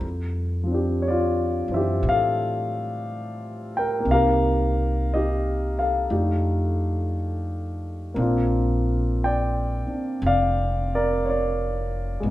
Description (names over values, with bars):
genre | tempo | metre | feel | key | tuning
jazz ballad | 59 BPM | 4/4 | swing 66% on 8ths | F major, Bb major from 8.2 s | A4 = 440 Hz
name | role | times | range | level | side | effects
warm concert grand piano | accompaniment | 0.0-12.3 s | E3 to G5 | -23 LUFS | left 1 dB | none
upright bass | bass | 0.0-12.3 s | F1 to A2 | -25 LUFS | equal | none
room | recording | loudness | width
moderate large studio reverb, RT60 1.2 s | band playing live in one room | -21 LUFS | side -15 dB against mid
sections
0.0-8.2 A section; 8.2-12.3 B section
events
none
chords
0.0 F69; 4.1 Cm7; 6.1 F13; 8.2 Bb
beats
| 0.03 1.03 2.04 3.05 | 4.06 5.08 6.10 7.14 | 8.17 9.20 10.22 11.24 | 12.25